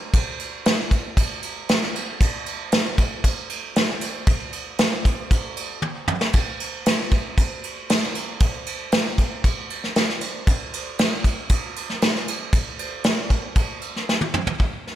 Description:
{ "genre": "rock", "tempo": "116 BPM", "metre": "4/4", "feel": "straight", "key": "none", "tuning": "none", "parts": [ { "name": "soft brush drum kit", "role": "drums", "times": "0.1-14.9 s", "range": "crash cymbal, hi-hat, kick drum, snare drum, toms", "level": "-20 LUFS", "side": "equal", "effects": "none" } ], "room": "light reverb", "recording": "none", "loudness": "-20 LUFS", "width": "side -12 dB against mid", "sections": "0.0-14.6 A section", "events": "drum fill 5.8-6.3, 14.1-14.6", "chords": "none" }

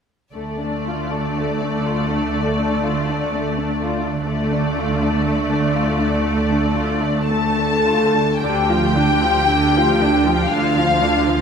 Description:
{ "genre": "classical, slow romantic movement for string orchestra", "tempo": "51-62 BPM", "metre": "4/4", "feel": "rubato", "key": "D minor", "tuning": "A4 = 440 Hz", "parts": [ { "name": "muted symphonic violin section", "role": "second line", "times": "0.3-11.4 s", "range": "A3 to A4", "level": "-24 LUFS", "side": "left 2 dB", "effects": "none" }, { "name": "muted symphonic viola section", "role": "accompaniment", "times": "0.3-11.4 s", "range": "D3 to F4", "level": "-21 LUFS", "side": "equal", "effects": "none" }, { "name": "muted studio cello section", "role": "bass", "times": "0.3-11.4 s", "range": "D2 to D3", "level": "-24 LUFS", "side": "right 2 dB", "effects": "none" }, { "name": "muted symphonic double bass section", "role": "bass", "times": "0.3-11.4 s", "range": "D2", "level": "-26 LUFS", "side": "right 5 dB", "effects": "none" }, { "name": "muted symphonic violin section", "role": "melody", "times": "0.4-11.4 s", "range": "D5 to A5", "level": "-23 LUFS", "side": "left 4 dB", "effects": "none" } ], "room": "moderate concert hall reverb, RT60 2.1 s", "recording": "none", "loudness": "-16 LUFS", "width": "side -6 dB against mid", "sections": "0.3-8.4 A section; 8.4-11.4 B section", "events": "none", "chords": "0.3 Dm" }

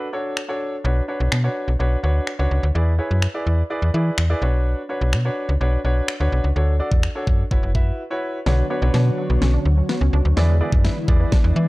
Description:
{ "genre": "dance-pop", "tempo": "126 BPM", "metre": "4/4", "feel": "straight", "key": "B dorian", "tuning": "A4 = 439 Hz", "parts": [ { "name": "warm grand piano", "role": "accompaniment", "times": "0.0-11.7 s", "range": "D4 to E5", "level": "-26 LUFS", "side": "equal", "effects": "sidechain pumping" }, { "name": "pop drum kit", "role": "drums", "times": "0.4-11.4 s", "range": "finger snaps, kick drum, snare drum", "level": "-21 LUFS", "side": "equal", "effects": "none" }, { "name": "slap-like FM bass", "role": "bass", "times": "0.8-11.7 s", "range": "F#1 to E3", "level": "-18 LUFS", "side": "equal", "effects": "sidechain pumping" }, { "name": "airy breathy pad", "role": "sustained chords", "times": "8.5-11.7 s", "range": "D3 to C#5", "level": "-28 LUFS", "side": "right 1 dB", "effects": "chorus, sidechain pumping" }, { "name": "wide unison pluck", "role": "arpeggios", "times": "8.5-11.6 s", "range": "D3 to E4", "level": "-29 LUFS", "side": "equal", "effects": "auto-pan, sidechain pumping, tape echo" } ], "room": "digital ambience", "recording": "dry, gritty hardware recording, cassette tape", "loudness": "-18 LUFS", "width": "side -20 dB against mid", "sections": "0.0-8.5 A section; 8.5-11.7 B section", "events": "break 8.0-8.5; build-up 8.5-11.7; drum fill 8.5-11.7", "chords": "0.0 Dmaj7; 0.8 Bmadd9; 2.8 E7; 4.4 Bmadd9; 6.6 Dmaj7; 7.5 F#7sus4; 8.5 Bmadd9; 10.4 E7" }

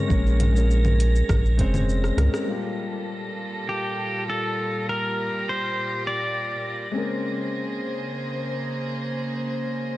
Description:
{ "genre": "sunset chillout", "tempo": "101 BPM", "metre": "4/4", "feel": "straight", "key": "unclear", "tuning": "A4 = 439 Hz", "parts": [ { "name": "pedal steel guitar", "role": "melody", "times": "0.0-6.9 s", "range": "G4 to D5", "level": "-28 LUFS", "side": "equal", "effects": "tape echo" }, { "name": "dark concert grand piano", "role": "accompaniment", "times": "0.0-10.0 s", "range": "G3 to Db5", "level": "-30 LUFS", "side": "moving between left 3 dB and right 3 dB", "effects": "auto-pan, low-pass filter, tape echo" }, { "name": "wind-like tuned noise texture", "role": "texture", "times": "0.0-10.0 s", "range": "Bb6", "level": "-35 LUFS", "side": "right 2 dB", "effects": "built-in reverb" }, { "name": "round analog bass", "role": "bass", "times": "0.1-2.3 s", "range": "F1 to Db2", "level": "-20 LUFS", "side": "equal", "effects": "none" }, { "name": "deep house drum kit", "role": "drums", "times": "0.1-2.5 s", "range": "congas, hi-hat, rim click, shaker", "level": "-30 LUFS", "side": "left 1 dB", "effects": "overdrive, small room ambience" }, { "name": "electronic kick drum", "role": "drums", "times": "0.1-1.7 s", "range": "none", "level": "-24 LUFS", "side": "equal", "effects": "overdrive, small room ambience" }, { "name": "rich chamber string section", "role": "sustained chords", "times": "2.5-10.0 s", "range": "Bb2 to C5", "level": "-30 LUFS", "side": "equal", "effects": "low-pass filter" } ], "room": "light reverb, digital ambience", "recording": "dry, gritty hardware recording, cassette tape, nothing above 10.3 kHz", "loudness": "-22 LUFS", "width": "side -16 dB against mid", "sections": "0.0-2.5 A section; 2.5-10.0 B section", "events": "drum fill 2.0-2.5; band accent 2.3; filter sweep on grand piano 2.5-10.0", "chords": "0.0 Bbm9; 2.5 Gm9; 6.9 Bbm9" }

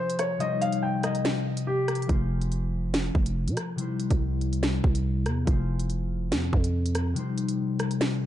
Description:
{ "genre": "hip hop, drill", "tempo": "142 BPM", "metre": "4/4", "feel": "half-time", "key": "F minor", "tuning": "A4 = 439 Hz", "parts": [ { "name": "dark grand piano", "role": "melody", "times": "0.0-2.1 s", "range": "G4 to G5", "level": "-29 LUFS", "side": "left 1 dB", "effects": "low-pass filter, ping-pong delay" }, { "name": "concert harp", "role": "accompaniment", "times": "0.0-8.3 s", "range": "C3 to C5", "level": "-29 LUFS", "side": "left 3 dB", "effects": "low-pass filter" }, { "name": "drill drum kit", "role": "drums", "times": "0.1-8.1 s", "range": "hi-hat, kick drum, rim click, snare drum", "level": "-28 LUFS", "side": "right 1 dB", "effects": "none" }, { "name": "growling 808-style bass", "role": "bass", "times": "2.1-7.1 s", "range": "F1 to C3", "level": "-27 LUFS", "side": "right 1 dB", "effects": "none" } ], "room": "light reverb", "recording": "nothing above 10.8 kHz", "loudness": "-24 LUFS", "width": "side -12 dB against mid", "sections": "0.0-8.3 A section", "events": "break 0.0-2.1; kick muted 7.2-8.3", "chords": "0.4 Cm; 2.1 Fm; 3.8 C; 5.5 Fm; 7.2 Cm" }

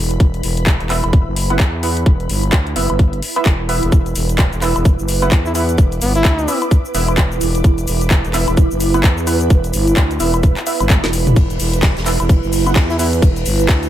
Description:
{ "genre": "bass house", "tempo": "129 BPM", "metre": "4/4", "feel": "swing 59% on 16ths", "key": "E minor", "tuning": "A4 = 442 Hz", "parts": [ { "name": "growling FM bass", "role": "bass", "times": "0.0-13.9 s", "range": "E1 to E2", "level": "-19 LUFS", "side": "equal", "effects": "tube saturation, sidechain pumping" }, { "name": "ethereal airy pad", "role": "texture", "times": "0.0-13.9 s", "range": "E4 to D6", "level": "-22 LUFS", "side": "right 3 dB", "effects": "ensemble chorus, built-in reverb, phaser, sidechain pumping" }, { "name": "garage drum kit", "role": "drums", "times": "0.1-13.9 s", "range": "handclaps, hi-hat, shaker, snare drum, toms, woodblock", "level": "-21 LUFS", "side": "left 2 dB", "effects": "none" }, { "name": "electronic kick drum", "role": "drums", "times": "0.2-13.8 s", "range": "none", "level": "-12 LUFS", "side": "equal", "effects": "none" }, { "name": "orchestra-hit-like synth stab", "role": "stabs", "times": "0.9-13.1 s", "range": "B3 to F#5", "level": "-23 LUFS", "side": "right 3 dB", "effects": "built-in reverb, sidechain pumping, ping-pong delay" }, { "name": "trumpet with bucket mute", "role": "melody", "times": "5.5-6.6, 12.9-13.1 s", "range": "B3 to E4", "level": "-21 LUFS", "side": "left 1 dB", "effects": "ping-pong delay" }, { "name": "jazz brush drum kit", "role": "drums", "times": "11.4-13.8 s", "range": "hi-hat, ride cymbal, snare drum", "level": "-29 LUFS", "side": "left 2 dB", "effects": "high-pass filter on cymbals, high-pass filter on hats, high-pass filter on snare, high-pass filter on room" } ], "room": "light reverb, small room ambience", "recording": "none", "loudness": "-13 LUFS", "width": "side -12 dB against mid", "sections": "0.0-13.9 A section", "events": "drum fill 10.9-11.4", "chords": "0.0 E5" }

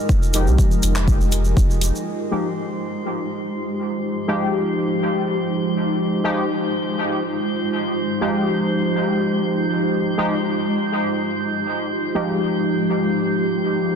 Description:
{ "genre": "dub techno", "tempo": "free time", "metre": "none", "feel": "none", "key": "F minor", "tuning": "A4 = 436 Hz", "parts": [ { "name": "granular cloud pad", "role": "sustained chords", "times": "0.0-14.0 s", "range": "Ab3 to C5", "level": "-26 LUFS", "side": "right 2 dB", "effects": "built-in reverb, sidechain pumping" }, { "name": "drifting glass-harmonics texture", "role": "texture", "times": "0.0-14.0 s", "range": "Ab3 to C5", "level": "-30 LUFS", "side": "equal", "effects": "chorus, built-in reverb, sidechain pumping" }, { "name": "pure sine sub bass", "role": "bass", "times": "0.1-1.9 s", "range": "F1 to C2", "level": "-19 LUFS", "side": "equal", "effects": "sidechain pumping" }, { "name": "electronic kick drum", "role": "drums", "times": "0.1-1.7 s", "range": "none", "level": "-17 LUFS", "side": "equal", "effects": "none" }, { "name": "egg shaker", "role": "percussion", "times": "0.1-2.0 s", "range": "none", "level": "-32 LUFS", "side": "right 3 dB", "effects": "none" }, { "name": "resonant sweep polysynth", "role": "stabs", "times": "0.3-14.0 s", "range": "F3 to G4", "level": "-21 LUFS", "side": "left 1 dB", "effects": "chorus, phaser, sidechain pumping, dub echo" }, { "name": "deep house drum kit", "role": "drums", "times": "0.3-1.9 s", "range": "handclaps, hi-hat", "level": "-28 LUFS", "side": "left 1 dB", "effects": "none" } ], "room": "moderate huge ambient reverb, RT60 6.4 s", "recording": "dense, heavily limited modern master", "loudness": "-18 LUFS", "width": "side -6 dB against mid", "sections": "0.0-2.1 A section; 2.1-14.0 B section", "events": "filter sweep on analog polysynth 0.0-2.1", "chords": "0.0 Fm9" }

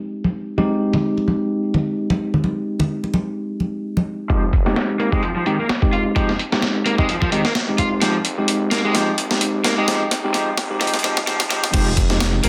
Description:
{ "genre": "breakbeat, breaks", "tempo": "129 BPM", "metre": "4/4", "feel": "swing 56% on 16ths", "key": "F minor", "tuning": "A4 = 439 Hz", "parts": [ { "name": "tine electric piano", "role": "stabs", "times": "0.0-12.5 s", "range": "Ab3 to G4", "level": "-24 LUFS", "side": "equal", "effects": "low-pass filter, digital delay" }, { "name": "congas", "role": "percussion", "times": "0.2-4.0 s", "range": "none", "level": "-23 LUFS", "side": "equal", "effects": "none" }, { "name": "raw garage guitar", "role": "riff", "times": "4.3-12.5 s", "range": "Eb3 to F4", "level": "-26 LUFS", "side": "equal", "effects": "overdrive, vintage 12-bit sampler grit, low-pass filter, digital delay" }, { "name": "detuned saw bass", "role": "bass", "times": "4.3-12.5 s", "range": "Eb1 to Ab1", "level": "-31 LUFS", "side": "equal", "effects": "none" }, { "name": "breakbeat sampler-style drum kit", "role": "drums", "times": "4.3-12.5 s", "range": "crash cymbal, hi-hat, kick drum, snare drum", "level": "-22 LUFS", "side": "equal", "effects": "low-pass filter on kick, studio ambience, low-pass filter on hats, low-pass filter on snare, low-pass filter on cymbals" } ], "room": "moderate plate reverb, RT60 0.9 s, digital ambience", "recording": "dense, heavily limited modern master, high-pass filter, low-pass filter", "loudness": "-20 LUFS", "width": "mono", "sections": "0.0-4.3 A section; 4.3-11.7 B section", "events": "filter sweep on tine electric piano 0.0-4.3, 4.3-11.7; build-up 4.3-11.7; filter sweep on drum 4.3-11.7; filter sweep 4.3-11.7; drum fill 8.0-11.7", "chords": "0.0 Abmaj7; 4.3 Fm7" }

